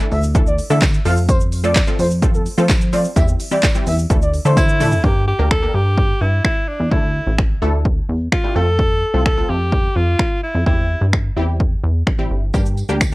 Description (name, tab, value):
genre	dance-pop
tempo	128 BPM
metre	4/4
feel	straight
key	G dorian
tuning	A4 = 440 Hz
part	wide unison pluck	accompaniment	0.0-13.1 s	E3 to C5	-24 LUFS	equal	sidechain pumping
part	house drum kit	drums	0.0-13.1 s	finger snaps, handclaps, hi-hat, kick drum, shaker, toms	-17 LUFS	equal	none
part	expressive portamento lead	melody	0.1-4.6 s	A4 to F5	-22 LUFS	equal	chorus, ping-pong delay
part	plucky analog bass	bass	0.1-13.1 s	G1 to F3	-18 LUFS	equal	sidechain pumping
part	tambourine	percussion	0.1-4.9, 12.5-13.1 s	none	-35 LUFS	right 6 dB	none
part	bright alto saxophone	melody	4.6-11.1 s	D4 to A4	-21 LUFS	equal	none
room	little or no reverb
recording	worn, warbling old tape, cassette tape, warbly pitch drift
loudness	-14 LUFS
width	side -20 dB against mid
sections	0.0-5.0 A section; 5.0-13.1 B section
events	drop 0.0-5.0; drum fill 4.6-5.0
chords	0.0 Dsus2; 1.1 F; 3.2 C/E; 4.1 Dsus2; 5.0 Gm; 6.9 Dsus2; 8.6 F; 10.7 C/E; 12.5 Gm